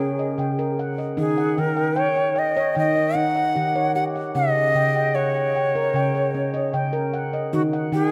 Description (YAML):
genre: world meditative, meditative tuned percussion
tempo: 76 BPM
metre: 4/4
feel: straight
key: unclear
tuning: A4 = 440 Hz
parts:
  - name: bright Native American-style cedar flute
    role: melody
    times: 0.0-8.1 s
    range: Gb4 to Gb5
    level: -25 LUFS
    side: equal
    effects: none
  - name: handpan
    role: arpeggios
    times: 0.0-8.1 s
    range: Db3 to G5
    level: -25 LUFS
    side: equal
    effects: tape echo
room: wet cathedral reverb, RT60 5.2 s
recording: none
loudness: -22 LUFS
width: mono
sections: 0.0-8.1 A section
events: none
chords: 0.0 Db5; 1.2 Ebm; 4.4 Eb7#9/Db; 7.5 Ebm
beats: 0.39 | 1.18 1.98 2.77 3.56 | 4.36 5.15 5.94 6.74 | 7.53